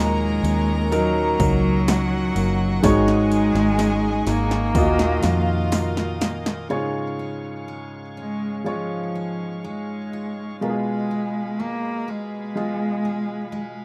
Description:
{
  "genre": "pop ballad",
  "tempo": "62 BPM",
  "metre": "4/4",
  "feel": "straight",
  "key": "unclear",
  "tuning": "A4 = 440 Hz",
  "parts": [
    { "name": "warm cello", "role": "melody", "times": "0.0-13.8 s", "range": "F3 to Bb3", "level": "-27 LUFS", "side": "equal", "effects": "none" },
    { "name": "warm studio violin section", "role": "second line", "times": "0.0-6.7 s", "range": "F4 to Bb5", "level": "-32 LUFS", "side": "equal", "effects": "none" },
    { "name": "clear baby grand piano", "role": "accompaniment", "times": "0.0-13.8 s", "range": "Ab2 to Eb5", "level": "-28 LUFS", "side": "equal", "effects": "none" },
    { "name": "bright tonewheel organ", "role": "sustained chords", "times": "0.0-13.8 s", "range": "Cb3 to Eb6", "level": "-40 LUFS", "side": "equal", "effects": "overdrive, slow rotary speaker" },
    { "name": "picked steel-string acoustic guitar", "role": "arpeggios", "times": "0.0-13.8 s", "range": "Ab2 to Ab4", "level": "-36 LUFS", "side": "equal", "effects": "delay" },
    { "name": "vintage muted fingered electric bass", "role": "bass", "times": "0.0-6.7 s", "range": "Gb1 to F2", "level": "-26 LUFS", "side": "equal", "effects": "none" },
    { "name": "punchy analog drum machine", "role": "drums", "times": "0.4-6.7 s", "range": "hi-hat, kick drum, snare drum", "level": "-27 LUFS", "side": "equal", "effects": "none" }
  ],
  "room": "small room reverb",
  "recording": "rough home demo mix",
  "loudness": "-22 LUFS",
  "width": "mono",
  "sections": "0.0-6.7 A section; 6.7-13.8 B section",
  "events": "drum fill 2.8-6.7",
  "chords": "0.0 Ebm7; 2.8 Ab7sus4; 4.8 Ebmadd9; 6.7 Db; 10.6 Fdim/Cb"
}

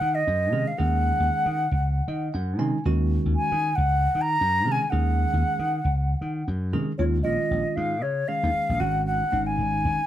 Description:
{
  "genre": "electric jazz fusion",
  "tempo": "116 BPM",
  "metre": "4/4",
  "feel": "swing 56% on 16ths",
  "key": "Eb dorian, Eb minor from 7.0 s",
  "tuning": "A4 = 440 Hz",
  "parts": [
    { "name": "concert flute", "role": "melody", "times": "0.0-10.1 s", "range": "Db5 to Bb5", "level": "-25 LUFS", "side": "equal", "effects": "none" },
    { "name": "slap bass", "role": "bass", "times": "0.0-10.0 s", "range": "Ab1 to Eb3", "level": "-25 LUFS", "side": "equal", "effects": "none" },
    { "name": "bell-like tine electric piano", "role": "accompaniment", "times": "0.5-10.0 s", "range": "Eb3 to Ab5", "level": "-28 LUFS", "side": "right 2 dB", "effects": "none" }
  ],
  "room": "moderate studio reverb, RT60 0.5 s",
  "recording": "band playing live in one room",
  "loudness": "-22 LUFS",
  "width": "side -12 dB against mid",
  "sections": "0.0-7.0 A section; 7.0-10.1 B section",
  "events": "tine electric piano fill 1.8-2.9",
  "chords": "0.0 Ebm7; 7.0 Eb9sus4; 8.8 Ab7sus4"
}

